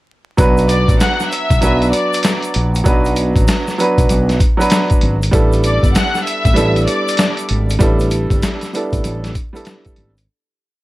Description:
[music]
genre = hip hop, boom-bap hip-hop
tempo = 97 BPM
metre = 4/4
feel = swing 63% on 16ths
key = B minor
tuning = A4 = 440 Hz
[part]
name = dark upright piano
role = accompaniment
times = 0.4-10.1 s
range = F#3 to B4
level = -18 LUFS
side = right 2 dB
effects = high-pass filter, low-pass filter
[part]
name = fretless electric bass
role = bass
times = 0.4-10.3 s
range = G1 to B1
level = -17 LUFS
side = equal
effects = analog chorus
[part]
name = boom bap sampler-style drum kit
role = drums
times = 0.4-10.3 s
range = hi-hat, kick drum, snare drum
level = -16 LUFS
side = equal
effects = none
[part]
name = egg shaker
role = percussion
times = 0.4-10.3 s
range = none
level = -35 LUFS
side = left 4 dB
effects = none
[part]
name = warm symphonic violin section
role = melody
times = 0.7-7.4 s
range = D5 to F#6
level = -19 LUFS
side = left 1 dB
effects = high-pass filter, low-pass filter, digital delay
[sound]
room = little or no reverb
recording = vinyl crackle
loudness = -12 LUFS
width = side -18 dB against mid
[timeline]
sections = 0.4-10.3 hook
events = fade-out 7.8-10.3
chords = 0.4 Bm; 5.3 A7sus4

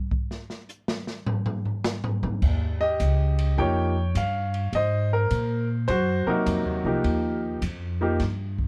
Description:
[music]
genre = jazz piano trio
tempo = 104 BPM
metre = 4/4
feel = swing 67% on 8ths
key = Eb mixolydian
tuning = A4 = 440 Hz
[part]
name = open jazz drum kit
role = drums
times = 0.1-8.7 s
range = crash cymbal, hi-hat, kick drum, ride cymbal, snare drum, toms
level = -32 LUFS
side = equal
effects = none
[part]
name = upright bass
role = bass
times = 2.2-8.7 s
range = Ab1 to Bb2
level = -27 LUFS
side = equal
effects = none
[part]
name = clear grand piano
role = melody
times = 2.8-8.2 s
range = C3 to G5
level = -28 LUFS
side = equal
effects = none
[sound]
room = light reverb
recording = none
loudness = -25 LUFS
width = mono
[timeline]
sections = 0.0-2.4 A section; 2.4-8.7 B section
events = drum solo 0.0-2.4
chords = 0.0 N.C.; 2.4 Eb9; 4.7 Ab9; 7.0 Ebadd9

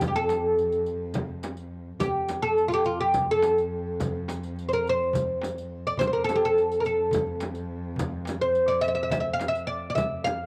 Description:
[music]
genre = Turkish makam ensemble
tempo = 211 BPM (eighths)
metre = 7/8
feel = straight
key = F makam rast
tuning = A4 = 440 Hz
[part]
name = oud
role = melody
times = 0.0-10.5 s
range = F4 to F5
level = -26 LUFS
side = equal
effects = cassette tape
[part]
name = dark cello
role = drone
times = 0.0-10.5 s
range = F2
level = -38 LUFS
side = equal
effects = cassette tape
[part]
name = frame drum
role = percussion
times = 0.0-10.4 s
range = none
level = -36 LUFS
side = equal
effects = none
[part]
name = riq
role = percussion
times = 0.0-10.4 s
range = none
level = -44 LUFS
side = equal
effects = none
[part]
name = darbuka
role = percussion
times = 0.3-10.4 s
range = none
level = -38 LUFS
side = equal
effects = none
[sound]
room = light reverb, studio reverb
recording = home recording on cassette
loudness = -26 LUFS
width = mono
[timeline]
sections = 0.0-10.5 A section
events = none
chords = none

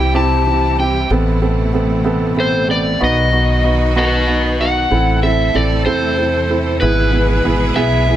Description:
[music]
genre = pop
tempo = 63 BPM (dotted quarters)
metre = 6/8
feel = straight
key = unclear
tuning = A4 = 440 Hz
[part]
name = overdriven slide guitar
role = melody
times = 0.0-8.2 s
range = B4 to A5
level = -17 LUFS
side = left 2 dB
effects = none
[part]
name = warm grand piano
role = accompaniment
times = 0.0-8.2 s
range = B3 to A4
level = -18 LUFS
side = right 4 dB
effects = none
[part]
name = bright studio string section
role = sustained chords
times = 0.0-8.2 s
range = B2 to A4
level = -24 LUFS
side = equal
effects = none
[part]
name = upright bass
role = bass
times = 0.0-8.2 s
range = G#1 to C2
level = -17 LUFS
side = equal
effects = none
[sound]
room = light reverb, studio ambience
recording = none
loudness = -13 LUFS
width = side -12 dB against mid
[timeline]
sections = 0.0-4.9 A section; 4.9-8.2 B section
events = none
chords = 0.0 C; 1.1 Amadd9; 3.0 B; 4.9 Am; 6.8 E/G#

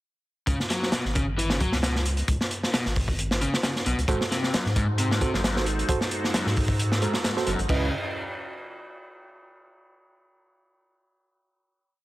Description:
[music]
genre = breakbeat, breaks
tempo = 133 BPM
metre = 4/4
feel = swing 54% on 16ths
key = unclear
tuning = A4 = 440 Hz
[part]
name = overdriven electric guitar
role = riff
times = 0.5-7.9 s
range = F#2 to F#3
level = -30 LUFS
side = left 1 dB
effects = digital delay
[part]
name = saturated sub bass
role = bass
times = 0.5-7.9 s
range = F#1 to G#2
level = -27 LUFS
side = equal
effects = tube saturation
[part]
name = crunchy breakbeat drum kit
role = drums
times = 0.5-7.8 s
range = crash cymbal, hi-hat, kick drum, snare drum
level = -26 LUFS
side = equal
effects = none
[part]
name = phased analog pad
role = sustained chords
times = 4.1-7.9 s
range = C#3 to D#5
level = -34 LUFS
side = right 1 dB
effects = phaser, chorus, sidechain pumping
[part]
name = tine electric piano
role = stabs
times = 4.1-7.9 s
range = E4 to D#5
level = -32 LUFS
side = right 4 dB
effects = digital delay
[sound]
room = light reverb, small room ambience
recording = heavily compressed radio sound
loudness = -23 LUFS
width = side -17 dB against mid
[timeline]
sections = 0.5-7.7 drop; 7.7-9.5 final chord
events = drop 0.5-7.7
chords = 0.5 C#7(no3); 4.1 G#7b9; 7.7 C#m7

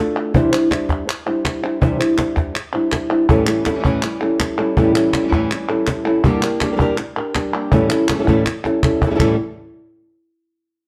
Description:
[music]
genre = flamenco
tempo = 162 BPM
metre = 4/4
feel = straight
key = unclear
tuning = A4 = 440 Hz
[part]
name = flamenco guitar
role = melody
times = 0.0-9.4 s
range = A2 to C5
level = -20 LUFS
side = equal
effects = none
[part]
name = palmas hand claps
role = percussion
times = 0.2-9.3 s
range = none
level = -28 LUFS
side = equal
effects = none
[part]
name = cajon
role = percussion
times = 0.3-9.3 s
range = none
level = -22 LUFS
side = equal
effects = none
[part]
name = flamenco guitar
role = stabs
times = 3.3-9.4 s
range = G2 to G4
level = -25 LUFS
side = equal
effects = none
[sound]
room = moderate studio reverb, RT60 0.9 s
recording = dark, warm production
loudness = -18 LUFS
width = mono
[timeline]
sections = 0.0-9.2 A section; 9.2-10.7 B section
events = drum fill 8.5-9.2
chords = 0.3 Cadd9; 3.3 A7; 6.2 Gm; 7.7 A7

